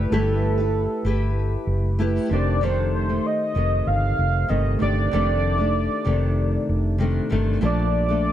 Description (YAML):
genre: indie pop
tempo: 96 BPM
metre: 4/4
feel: straight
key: unclear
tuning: A4 = 440 Hz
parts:
  - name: warm velvety synth lead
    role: melody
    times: 0.0-8.3 s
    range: A4 to F5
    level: -26 LUFS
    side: equal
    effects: lush chorus, digital delay
  - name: fingerpicked steel-string acoustic guitar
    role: accompaniment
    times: 0.0-8.3 s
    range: F2 to B4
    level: -26 LUFS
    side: left 3 dB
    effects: lush chorus, vibrato effect
  - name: warbly lo-fi synth keys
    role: accompaniment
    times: 0.0-8.3 s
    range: A3 to A5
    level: -30 LUFS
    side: right 4 dB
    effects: chorus
  - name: vintage muted fingered electric bass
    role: bass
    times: 0.0-8.3 s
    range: F1 to Bb1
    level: -22 LUFS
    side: equal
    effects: none
room: light reverb, digital ambience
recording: none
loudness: -20 LUFS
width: side -11 dB against mid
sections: 0.0-8.3 A section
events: none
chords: 0.0 G69; 2.3 F13; 7.6 Bbmaj7